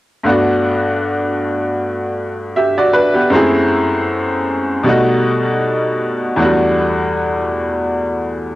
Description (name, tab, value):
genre	hip hop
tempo	78 BPM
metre	4/4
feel	swing 56% on 16ths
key	G major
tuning	A4 = 440 Hz
part	bright upright piano	accompaniment	0.2-8.6 s	E2 to E5	-14 LUFS	equal	cassette tape
room	moderate booth ambience, RT60 0.2 s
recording	home recording on cassette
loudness	-14 LUFS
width	side -16 dB against mid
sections	0.2-8.6 A section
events	none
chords	0.2 Gmaj9; 3.3 F#m7b5; 4.9 B7b13; 6.4 Em11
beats	| 0.23 1.00 1.77 2.54 | 3.31 4.08 4.85 5.62 | 6.39 7.16 7.93